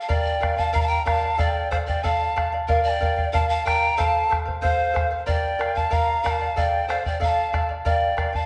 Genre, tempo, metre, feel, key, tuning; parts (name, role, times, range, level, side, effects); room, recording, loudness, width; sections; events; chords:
andean folk, Andean ensemble; 93 BPM; 2/4; straight; A4 = 439 Hz
large quena; melody; 0.0-8.5 s; F5 to Bb5; -27 LUFS; equal
breathy bright pan flute; second line; 0.0-8.5 s; Bb4 to G5; -30 LUFS; equal
charango; accompaniment; 0.0-8.5 s; A4 to F5; -29 LUFS; equal
bombo; percussion; 0.1-8.5 s; -28 LUFS; equal
wet recital hall reverb, RT60 1.5 s; recorded in a church or concert hall, nothing above 10.8 kHz; -22 LUFS; mono
0.1-8.5 A section
0.1 Bb; 1.4 Dm; 2.7 Bb; 4.0 F; 5.3 Bb; 6.6 Dm; 7.9 Bb